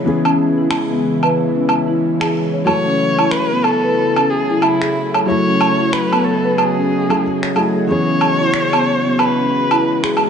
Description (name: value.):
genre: organic downtempo.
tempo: 92 BPM.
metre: 4/4.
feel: swing 60% on 16ths.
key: C# minor.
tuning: A4 = 440 Hz.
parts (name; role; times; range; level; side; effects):
felt-muted upright piano; accompaniment; 0.0-10.3 s; E3 to G#4; -21 LUFS; left 1 dB; digital delay.
bowed-like drone; sustained chords; 0.0-10.3 s; C#3 to D#5; -21 LUFS; equal; built-in reverb.
marimba with soft mallets; arpeggios; 0.0-10.3 s; B3 to C#5; -20 LUFS; equal; vintage 12-bit sampler grit, low-pass filter, digital delay.
electronic woodblock and finger snaps; drums; 0.3-10.3 s; none; -19 LUFS; right 2 dB; none.
rich kamancheh; melody; 2.7-10.2 s; E4 to C#5; -19 LUFS; left 1 dB; vintage 12-bit sampler grit, digital delay.
room: moderate lush hall reverb, RT60 2.6 s.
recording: nothing above 10.5 kHz.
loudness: -13 LUFS.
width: side -7 dB against mid.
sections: 0.0-10.3 A section.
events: none.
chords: 0.0 C#m7; 2.7 F#m9; 7.9 C#m7.